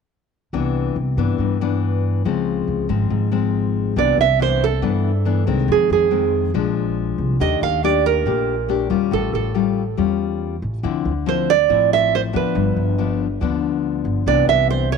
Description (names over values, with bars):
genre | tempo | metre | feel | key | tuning
bossa nova | 140 BPM | 4/4 | straight | C major | A4 = 440 Hz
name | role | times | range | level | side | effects
nylon-string guitar | accompaniment | 0.5-15.0 s | F2 to G4 | -21 LUFS | left 11 dB | none
upright bass | bass | 0.5-15.0 s | G1 to G2 | -22 LUFS | right 1 dB | none
nylon-string guitar | melody | 4.0-15.0 s | Ab4 to F5 | -19 LUFS | right 13 dB | none
room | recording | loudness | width
light reverb, studio reverb | 1960s-style stereo with parts hard left and right | -17 LUFS | side -5 dB against mid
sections
0.5-4.0 A section; 4.0-15.0 B section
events
none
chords
0.5 Cmaj9; 2.2 Dbmaj7; 4.0 Cmaj9; 5.7 Fm7; 6.5 Bb7; 7.4 Ebmaj9#11; 9.1 A7b13; 10.8 Dm9; 12.6 G7; 14.3 Cmaj9